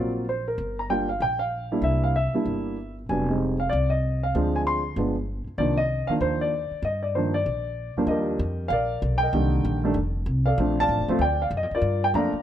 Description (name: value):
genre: jazz piano trio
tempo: 192 BPM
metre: 4/4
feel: swing 61% on 8ths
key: C minor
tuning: A4 = 440 Hz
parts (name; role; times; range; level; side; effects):
- warm baby grand piano; melody; 0.0-12.4 s; Eb2 to C6; -24 LUFS; equal; none
- upright bass; bass; 0.0-12.4 s; D1 to G2; -27 LUFS; equal; none
room: light reverb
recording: none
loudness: -22 LUFS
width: side -10 dB against mid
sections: 0.0-8.1 A section; 8.1-12.4 B section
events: none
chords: 0.0 D7#9b13 (rootless); 0.6 Gm7; 1.8 C7; 3.1 Fm7; 4.3 Dm7b5; 5.0 G7b9; 5.6 Cm11; 7.5 Bb; 8.1 Ebmaj9; 9.3 Cm9; 10.0 F5; 10.6 Bbmaj7; 11.8 Gm9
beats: 0.27 | 0.58 0.89 1.21 1.52 | 1.83 2.15 2.46 2.77 | 3.08 3.40 3.71 4.02 | 4.34 4.65 4.96 5.28 | 5.59 5.90 6.21 6.53 | 6.84 7.15 7.46 7.78 | 8.09 8.40 8.71 9.02 | 9.34 9.65 9.96 10.27 | 10.58 10.90 11.21 11.52 | 11.83 12.14